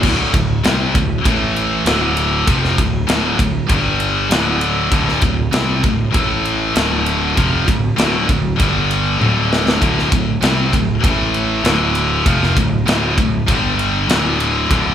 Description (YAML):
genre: heavy metal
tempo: 98 BPM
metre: 4/4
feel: straight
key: D minor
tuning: A4 = 440 Hz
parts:
  - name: heavy high-gain guitar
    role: riff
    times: 0.0-14.9 s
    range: D2 to C4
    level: -18 LUFS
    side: left 7 dB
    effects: distortion
  - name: high-gain distorted guitar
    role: riff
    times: 0.0-14.9 s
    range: D2 to C4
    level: -20 LUFS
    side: right 6 dB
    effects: distortion
  - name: fuzz picked electric bass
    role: bass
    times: 0.0-14.9 s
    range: D1 to C2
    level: -21 LUFS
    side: equal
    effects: overdrive
  - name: tight metal drum kit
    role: drums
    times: 0.0-14.8 s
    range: crash cymbal, kick drum, ride cymbal, snare drum, toms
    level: -18 LUFS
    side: equal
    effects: none
room: moderate large studio reverb, RT60 1.3 s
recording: band playing live in one room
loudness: -13 LUFS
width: side -9 dB against mid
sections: 0.0-14.9 A section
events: drum fill 9.2-9.8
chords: 0.0 D5; 1.3 A5; 1.9 Dm; 3.7 G5; 4.3 D5; 6.1 A5; 6.8 Dm; 8.6 G5; 9.2 D5; 11.0 A5; 11.7 Dm; 13.5 G5; 14.1 D5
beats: | 0.03 0.64 1.25 1.86 | 2.47 3.08 3.70 4.31 | 4.92 5.53 6.14 6.76 | 7.37 7.98 8.59 9.20 | 9.81 10.43 11.04 11.65 | 12.26 12.87 13.48 14.10 | 14.71